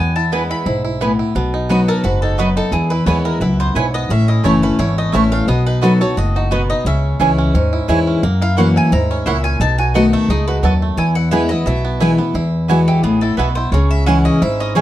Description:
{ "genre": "bluegrass", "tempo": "175 BPM", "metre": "4/4", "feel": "straight", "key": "E major", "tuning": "A4 = 440 Hz", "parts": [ { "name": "bluegrass banjo", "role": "melody", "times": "0.0-14.8 s", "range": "A3 to A4", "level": "-25 LUFS", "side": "right 5 dB", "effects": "plate reverb" }, { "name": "mandolin", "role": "melody", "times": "0.0-14.8 s", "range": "F#4 to B5", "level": "-23 LUFS", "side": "left 1 dB", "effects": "plate reverb" }, { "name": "picked steel-string acoustic guitar", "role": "accompaniment", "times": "0.0-14.8 s", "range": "E2 to F#4", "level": "-16 LUFS", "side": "left 2 dB", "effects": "none" }, { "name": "upright bass", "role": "bass", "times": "0.0-14.8 s", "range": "F#1 to F#2", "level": "-18 LUFS", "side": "equal", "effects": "none" }, { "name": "mandolin", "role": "stabs", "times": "0.3-14.8 s", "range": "A3 to B5", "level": "-20 LUFS", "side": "right 6 dB", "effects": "none" } ], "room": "light reverb", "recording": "dark, warm production", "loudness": "-13 LUFS", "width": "side -13 dB against mid", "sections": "0.0-1.4 A section; 1.4-12.4 B section; 12.4-14.8 C section", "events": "mandolin solo 12.4-14.8", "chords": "0.0 E; 1.4 B; 2.7 E; 4.1 A; 5.5 B; 6.9 C#m; 8.2 F#7; 9.6 B7; 11.0 E; 12.4 Eadd9; 13.7 C#m" }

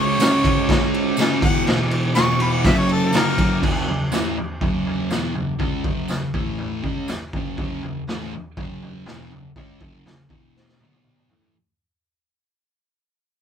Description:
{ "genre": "garage rock duo or trio", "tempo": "121 BPM", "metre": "4/4", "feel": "straight", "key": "unclear", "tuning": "A4 = 439 Hz", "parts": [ { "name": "clear harmonica", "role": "melody", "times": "0.0-3.6 s", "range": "A4 to C#6", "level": "-23 LUFS", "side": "left 2 dB", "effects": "overdrive" }, { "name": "fuzz guitar", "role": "riff", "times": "0.0-11.5 s", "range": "E2 to C#4", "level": "-22 LUFS", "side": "right 1 dB", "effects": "distortion" }, { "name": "raw garage drum kit", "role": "drums", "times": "0.2-11.5 s", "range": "crash cymbal, kick drum, ride cymbal, snare drum, toms", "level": "-22 LUFS", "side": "equal", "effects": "none" }, { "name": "tambourine", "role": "percussion", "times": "0.2-7.2 s", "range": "none", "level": "-34 LUFS", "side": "right 3 dB", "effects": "none" } ], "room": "wet small room ambience, RT60 0.5 s", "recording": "band playing live in one room", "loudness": "-18 LUFS", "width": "side -8 dB against mid", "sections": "0.0-3.6 A section; 3.6-11.5 B section", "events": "fade-out 3.6-11.5; drum fill 10.5-11.5", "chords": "0.0 C#5; 1.4 E5; 2.6 F#; 3.6 F#5; 6.3 A5; 6.8 F#5; 10.3 E5; 10.8 B5; 11.3 A5" }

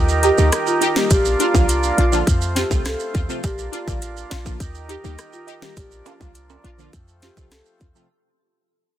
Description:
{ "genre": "dancehall", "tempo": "103 BPM", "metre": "4/4", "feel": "straight", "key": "Bb major", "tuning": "A4 = 440 Hz", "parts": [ { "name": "mellow accordion", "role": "sustained chords", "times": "0.0-8.1 s", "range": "Eb3 to Bb4", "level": "-25 LUFS", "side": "right 3 dB", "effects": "sidechain pumping" }, { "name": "short 808-style bass", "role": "bass", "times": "0.0-7.9 s", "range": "A1 to F2", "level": "-21 LUFS", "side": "equal", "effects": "none" }, { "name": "maracas and timbales", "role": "percussion", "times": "0.1-8.1 s", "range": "none", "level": "-31 LUFS", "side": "right 10 dB", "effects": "none" }, { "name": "marimba with soft mallets", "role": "melody", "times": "0.2-7.9 s", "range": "F4 to A4", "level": "-24 LUFS", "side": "left 1 dB", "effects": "tape echo" }, { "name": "synth brass stab", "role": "accompaniment", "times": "0.2-8.1 s", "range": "C3 to G4", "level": "-24 LUFS", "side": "right 1 dB", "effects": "chorus, phaser" }, { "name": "island pop drum kit", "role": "drums", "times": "0.2-7.9 s", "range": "hi-hat, kick drum, rim click, snare drum", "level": "-22 LUFS", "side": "equal", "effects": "overdrive" } ], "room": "light reverb, studio reverb", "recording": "dense, heavily limited modern master", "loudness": "-16 LUFS", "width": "side -12 dB against mid", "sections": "0.0-8.1 A section", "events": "fade-out 0.0-8.1", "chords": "0.0 Eb; 1.1 Bb; 2.3 F; 3.4 Bb; 4.6 Eb; 5.8 Bb; 6.9 F" }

